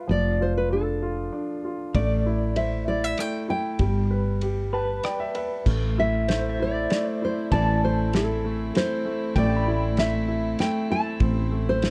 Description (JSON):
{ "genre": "acoustic folk-pop ballad", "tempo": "97 BPM", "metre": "3/4", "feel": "straight", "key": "A minor", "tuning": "A4 = 441 Hz", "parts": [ { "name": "nylon-string guitar", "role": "melody", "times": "0.0-11.9 s", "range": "A4 to A5", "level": "-30 LUFS", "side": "equal", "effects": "none" }, { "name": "warm grand piano", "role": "accompaniment", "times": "0.0-11.9 s", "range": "E3 to A5", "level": "-31 LUFS", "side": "equal", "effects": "none" }, { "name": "woody fretless electric bass", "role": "bass", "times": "0.1-11.9 s", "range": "F1 to A1", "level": "-28 LUFS", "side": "equal", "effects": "none" }, { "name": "cloth-damped thuddy drum kit", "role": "drums", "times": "1.9-11.9 s", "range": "crash cymbal, kick drum, ride cymbal, rim click, snare drum", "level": "-29 LUFS", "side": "equal", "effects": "none" }, { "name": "electric guitar at the edge of break-up", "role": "arpeggios", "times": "2.0-11.1 s", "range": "B4 to B5", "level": "-34 LUFS", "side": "equal", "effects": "tremolo, slapback echo" }, { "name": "warm chamber string section", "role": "sustained chords", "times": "5.7-11.9 s", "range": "A3 to E4", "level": "-39 LUFS", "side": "equal", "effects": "none" } ], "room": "light reverb", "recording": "dark, warm production", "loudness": "-25 LUFS", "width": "mono", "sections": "0.0-5.7 A section; 5.7-11.9 B section", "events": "none", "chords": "0.1 Dm/F; 1.9 Am; 3.8 G69; 5.7 Am" }